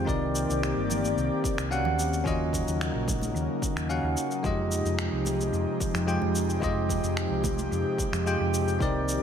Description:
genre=sunset chillout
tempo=110 BPM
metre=4/4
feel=straight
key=F minor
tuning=A4 = 443 Hz
part: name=bell-like tine electric piano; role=accompaniment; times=0.0-9.2 s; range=Ab3 to G5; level=-30 LUFS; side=equal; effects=auto-pan, analog delay
part: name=airy breathy pad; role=sustained chords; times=0.0-9.2 s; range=C3 to D5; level=-30 LUFS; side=left 1 dB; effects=chorus
part: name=hollow-body short-scale fingered electric bass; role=bass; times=0.0-9.2 s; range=G1 to F2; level=-30 LUFS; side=equal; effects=none
part: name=electronic kick drum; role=drums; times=0.1-8.9 s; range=none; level=-32 LUFS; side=equal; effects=none
part: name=electronic shaker and finger snaps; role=drums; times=0.1-9.2 s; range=none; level=-36 LUFS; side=equal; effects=none
part: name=congas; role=percussion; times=0.9-7.7 s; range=none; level=-40 LUFS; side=right 4 dB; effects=none
room=moderate plate reverb, RT60 2.1 s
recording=dreamy mix soaked in reverb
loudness=-25 LUFS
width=side -8 dB against mid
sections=0.0-9.2 A section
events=none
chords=0.1 Cm9; 2.0 Ebm9; 4.4 Fm9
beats=| 0.07 0.62 1.17 1.71 | 2.26 2.80 3.35 3.89 | 4.44 4.98 5.53 6.07 | 6.62 7.17 7.71 8.26 | 8.80

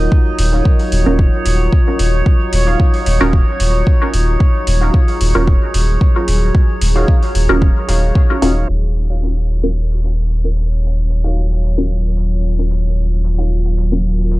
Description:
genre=dub techno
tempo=112 BPM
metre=4/4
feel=straight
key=Eb minor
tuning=A4 = 439 Hz
part: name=deep dark ambient pad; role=sustained chords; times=0.0-14.4 s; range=Gb3 to Db5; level=-24 LUFS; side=left 1 dB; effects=chorus, built-in reverb, sidechain pumping
part: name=soft dub sub bass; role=bass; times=0.0-14.4 s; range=Eb1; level=-15 LUFS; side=equal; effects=sidechain pumping
part: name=drifting glass-harmonics texture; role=texture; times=0.0-8.7 s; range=Eb4 to Eb5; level=-24 LUFS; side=right 2 dB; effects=chorus, built-in reverb, sidechain pumping
part: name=electronic kick drum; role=drums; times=0.1-8.3 s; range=none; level=-12 LUFS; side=equal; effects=studio reverb
part: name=electronic hi-hat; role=drums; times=0.4-14.4 s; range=none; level=-26 LUFS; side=equal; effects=low-pass filter on hats, studio reverb
part: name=warbly dusty pluck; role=riff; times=0.5-13.5 s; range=Eb4 to F5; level=-27 LUFS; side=right 1 dB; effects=chorus, sidechain pumping, dub echo
part: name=filtered dub chord stab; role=stabs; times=1.1-14.1 s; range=Db4 to Bb4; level=-20 LUFS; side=right 1 dB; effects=phaser, sidechain pumping, dub echo
room=digital ambience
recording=dry, gritty hardware recording, cassette tape, low-pass filter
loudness=-12 LUFS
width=side -18 dB against mid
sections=0.0-8.7 A section; 8.7-14.4 B section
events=filter sweep 8.7-14.4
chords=0.0 Ebm9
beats=| 0.12 0.65 1.19 1.73 | 2.26 2.80 3.33 3.87 | 4.40 4.94 5.48 6.01 | 6.55 7.08 7.62 8.15 | 8.69 9.23 9.76 10.30 | 10.83 11.37 11.90 12.44 | 12.98 13.51 14.05

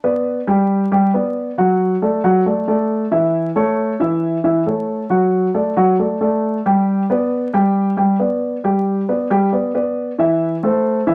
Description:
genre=latin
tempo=136 BPM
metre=4/4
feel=straight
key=G major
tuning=A4 = 440 Hz
part: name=dark concert grand piano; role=solo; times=0.0-11.1 s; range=E3 to G5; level=-17 LUFS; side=equal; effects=none
room=moderate studio reverb, RT60 0.7 s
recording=vinyl crackle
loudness=-17 LUFS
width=mono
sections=0.0-11.1 A section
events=none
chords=0.0 G; 1.6 Dadd9; 3.3 A; 5.1 D; 6.9 G; 8.6 Em7; 10.4 Am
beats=0.25 0.69 1.13 | 1.57 2.02 2.46 2.90 | 3.34 3.78 4.22 4.67 | 5.11 5.55 5.99 6.43 | 6.87 7.32 7.76 8.20 | 8.64 9.08 9.52 9.96 | 10.40 10.85

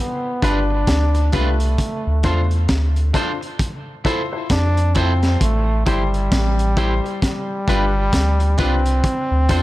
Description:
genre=dub reggae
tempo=66 BPM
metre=4/4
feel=swing 60% on 16ths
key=unclear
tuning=A4 = 440 Hz
part: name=clear trombone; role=melody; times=0.0-9.6 s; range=G3 to D4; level=-23 LUFS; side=equal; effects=dub echo
part: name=electric guitar at the edge of break-up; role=accompaniment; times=0.4-9.6 s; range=D4 to C5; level=-28 LUFS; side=right 4 dB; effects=dub echo
part: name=dark concert grand piano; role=stabs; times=0.4-9.6 s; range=D4 to C5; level=-27 LUFS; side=left 5 dB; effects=dub echo
part: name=warm sub bass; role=bass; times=0.4-9.6 s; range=G1 to F2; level=-18 LUFS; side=equal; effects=none
part: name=crunchy breakbeat drum kit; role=drums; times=0.4-9.6 s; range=hi-hat, kick drum, snare drum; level=-22 LUFS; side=equal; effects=none
room=small room ambience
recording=none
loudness=-16 LUFS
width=side -16 dB against mid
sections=0.0-9.6 A section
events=none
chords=0.0 G7; 1.8 Dm7; 3.6 Fmaj7; 5.4 Am7; 7.2 G7; 9.0 Dm7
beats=0.88 | 1.78 2.69 3.60 4.50 | 5.41 6.32 7.22 8.13 | 9.04

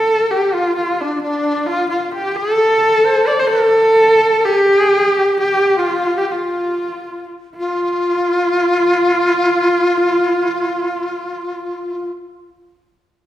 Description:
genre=mongolian traditional, Mongolian folk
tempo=98-132 BPM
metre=4/4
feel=straight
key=F gong mode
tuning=A4 = 440 Hz
part: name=warm horsehead fiddle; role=melody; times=0.0-12.1 s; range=D4 to D5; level=-16 LUFS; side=equal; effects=none
part: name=large dizi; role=second line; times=0.0-12.1 s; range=D4 to C5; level=-18 LUFS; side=left 1 dB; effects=none
room=wet recital hall reverb, RT60 1.5 s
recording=recorded in a church or concert hall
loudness=-13 LUFS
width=side -12 dB against mid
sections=0.0-7.6 A section; 7.6-12.5 B section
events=slowing down 3.5-7.6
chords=none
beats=0.32 0.77 1.23 | 1.68 2.14 2.60 3.05 | 3.51 3.97 4.43 4.91 | 5.40 5.91 6.44 7.00 | 7.59 8.20 8.81 9.42 | 10.03 10.64 11.25 11.86

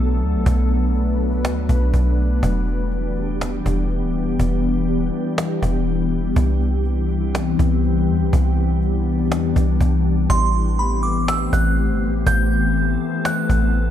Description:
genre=hip hop, atmospheric cloud-rap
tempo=122 BPM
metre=4/4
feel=half-time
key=A dorian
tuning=A4 = 440 Hz
part: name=glassy FM pad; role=sustained chords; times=0.0-13.9 s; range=E3 to B4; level=-21 LUFS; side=left 3 dB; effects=ensemble chorus, built-in reverb
part: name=soft 808-style bass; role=bass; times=0.0-13.9 s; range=D1 to E2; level=-20 LUFS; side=equal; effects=none
part: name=cajon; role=drums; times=0.5-13.8 s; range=none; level=-26 LUFS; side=equal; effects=none
part: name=glassy synth bell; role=melody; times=10.3-13.7 s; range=B5 to G6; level=-23 LUFS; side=right 3 dB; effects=chorus, tape echo
room=moderate scoring stage reverb, RT60 2.0 s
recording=dark, warm production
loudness=-17 LUFS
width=side -10 dB against mid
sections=0.0-10.3 A section; 10.3-13.9 B section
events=none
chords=0.0 Bm7; 2.4 Em7; 6.4 Cmaj7; 10.3 Am9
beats=| 0.46 0.95 1.45 1.94 | 2.43 2.92 3.41 3.90 | 4.40 4.89 5.38 5.87 | 6.36 6.86 7.35 7.84 | 8.33 8.82 9.31 9.81 | 10.30 10.79 11.28 11.77 | 12.27 12.76 13.25 13.74

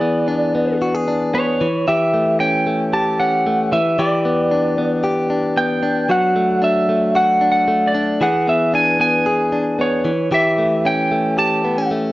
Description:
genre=indie pop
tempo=114 BPM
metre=4/4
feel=straight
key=unclear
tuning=A4 = 440 Hz
part: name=lightly driven lead guitar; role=melody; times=0.0-11.9 s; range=C#5 to A5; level=-18 LUFS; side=right 1 dB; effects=slapback echo
part: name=direct-recorded clean electric guitar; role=arpeggios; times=0.0-12.1 s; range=E3 to G#4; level=-18 LUFS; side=left 1 dB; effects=none
room=moderate echo chamber reverb, RT60 1.4 s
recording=worn, warbling old tape, cassette tape, warbly pitch drift, nothing above 7.6 kHz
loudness=-15 LUFS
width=side -18 dB against mid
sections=0.0-12.1 A section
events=none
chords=0.0 E7; 1.6 A7; 3.7 Em7; 6.1 Dadd9/F#; 8.2 E7; 10.1 A7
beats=0.28 0.81 1.34 | 1.87 2.40 2.93 3.46 | 3.98 4.51 5.04 5.57 | 6.10 6.62 7.15 7.68 | 8.21 8.73 9.26 9.79 | 10.32 10.85 11.38 11.91

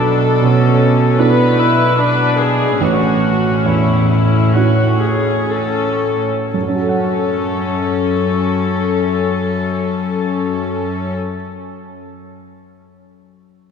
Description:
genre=cinematic, emotional film score for orchestra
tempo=57-80 BPM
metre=4/4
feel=rubato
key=F# minor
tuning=A4 = 440 Hz
part: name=warm grand piano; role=accompaniment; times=0.0-13.7 s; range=A1 to F#5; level=-19 LUFS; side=right 5 dB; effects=none
part: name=warm studio viola section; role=accompaniment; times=0.0-11.1 s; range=B3 to B4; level=-17 LUFS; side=left 4 dB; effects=none
part: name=warm symphonic cello section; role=bass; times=0.0-11.1 s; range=F#2 to B2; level=-18 LUFS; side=right 1 dB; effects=none
room=wet cathedral reverb, RT60 4.2 s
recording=none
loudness=-13 LUFS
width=side -6 dB against mid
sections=0.0-6.5 A section; 6.5-10.6 B section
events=slowing down 0.0-6.5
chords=0.0 E7sus4/B; 2.8 A6; 6.5 F#m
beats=0.41 1.19 1.99 | 2.81 3.66 4.55 5.51 | 6.54 7.58 8.60 9.63

